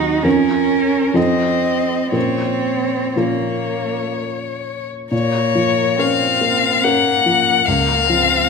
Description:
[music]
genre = classical, slow romantic movement for piano trio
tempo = 58-73 BPM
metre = 3/4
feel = rubato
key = Bb minor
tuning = A4 = 440 Hz
[part]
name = rich violin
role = melody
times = 0.0-8.5 s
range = Gb4 to Gb5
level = -18 LUFS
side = left 7 dB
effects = none
[part]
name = rich cello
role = second line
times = 0.0-8.5 s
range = Bb3 to Eb4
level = -20 LUFS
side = right 6 dB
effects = none
[part]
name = warm baby grand piano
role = accompaniment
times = 0.0-8.5 s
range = Db2 to C5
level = -20 LUFS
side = left 1 dB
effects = none
[sound]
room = moderate scoring stage reverb, RT60 1.9 s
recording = minimal, uncompressed stereo recording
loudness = -14 LUFS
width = side -5 dB against mid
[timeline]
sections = 0.0-5.1 A section; 5.1-8.5 B section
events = none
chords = 0.2 Bbm/F; 1.2 F7; 2.1 Bbm; 7.7 Bbm/Db

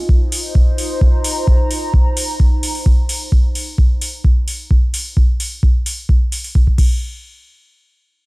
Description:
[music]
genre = acid house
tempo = 130 BPM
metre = 4/4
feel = straight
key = C minor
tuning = A4 = 440 Hz
[part]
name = warbly tape-like pad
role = texture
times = 0.0-3.3 s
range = Eb4 to Bb5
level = -25 LUFS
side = equal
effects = chorus, built-in reverb, sidechain pumping
[part]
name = electronic kick drum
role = drums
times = 0.1-6.9 s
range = none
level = -13 LUFS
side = equal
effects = overdrive
[part]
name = electro analog drum machine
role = drums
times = 0.3-6.9 s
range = crash cymbal, hi-hat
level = -24 LUFS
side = equal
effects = overdrive
[sound]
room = little or no reverb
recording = dry, gritty hardware recording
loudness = -13 LUFS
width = side -23 dB against mid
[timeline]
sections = 0.0-7.0 A section; 7.0-8.3 B section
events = none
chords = 0.0 Cm7; 3.3 N.C.

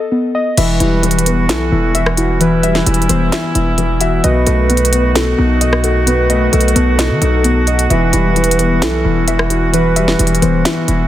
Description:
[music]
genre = hip hop, trap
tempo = 131 BPM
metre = 4/4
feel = half-time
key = E harmonic minor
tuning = A4 = 441 Hz
[part]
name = warbly dusty pluck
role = arpeggios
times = 0.0-11.1 s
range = E3 to E5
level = -18 LUFS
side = left 3 dB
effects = chorus, low-pass filter, tape echo
[part]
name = warm velvety synth lead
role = second line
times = 0.6-10.6 s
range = A4 to C5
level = -21 LUFS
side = right 2 dB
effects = chorus, tape echo
[part]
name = dark concert grand piano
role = accompaniment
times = 0.6-11.1 s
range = B2 to F#4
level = -18 LUFS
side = left 1 dB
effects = low-pass filter
[part]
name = warm woodwind section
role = sustained chords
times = 0.6-11.1 s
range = D#3 to F#4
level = -21 LUFS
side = right 2 dB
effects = none
[part]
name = distorted 808-style bass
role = bass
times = 0.6-11.1 s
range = E1 to D#3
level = -16 LUFS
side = equal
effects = distortion
[part]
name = trap drum kit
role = drums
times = 0.6-11.0 s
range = crash cymbal, hi-hat, rim click, snare drum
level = -18 LUFS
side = equal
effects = none
[sound]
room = light reverb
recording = dense, heavily limited modern master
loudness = -11 LUFS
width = side -13 dB against mid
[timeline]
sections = 0.6-11.1 A section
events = break 0.0-0.6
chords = 0.0 B7; 0.6 Emadd9; 4.2 B7; 7.9 Emadd9

